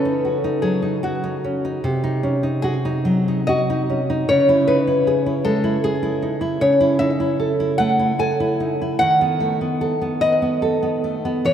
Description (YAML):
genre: romantic duo for nylon-string guitar and classical guitar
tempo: 75 BPM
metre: 3/4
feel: uneven beats, rubato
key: C# minor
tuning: A4 = 444 Hz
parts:
  - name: nylon-string guitar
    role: melody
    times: 0.0-11.5 s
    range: F#4 to G#5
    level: -20 LUFS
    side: left 1 dB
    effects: slapback echo
  - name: nylon-string guitar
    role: accompaniment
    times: 0.0-11.5 s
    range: B#2 to B4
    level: -20 LUFS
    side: right 1 dB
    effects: none
room: wet cathedral reverb, RT60 5.6 s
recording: in a vast, echoing space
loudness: -17 LUFS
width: side -9 dB against mid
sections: 0.0-11.5 A section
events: none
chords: 0.0 D#m7b5/C#; 1.8 G#7/B#; 4.3 C#m; 6.6 A/C#; 9.0 B7/D#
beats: 0.24 1.04 | 1.84 2.63 3.48 | 4.28 5.07 5.83 | 6.61 7.38 8.18 | 8.99 9.80 10.62 | 11.45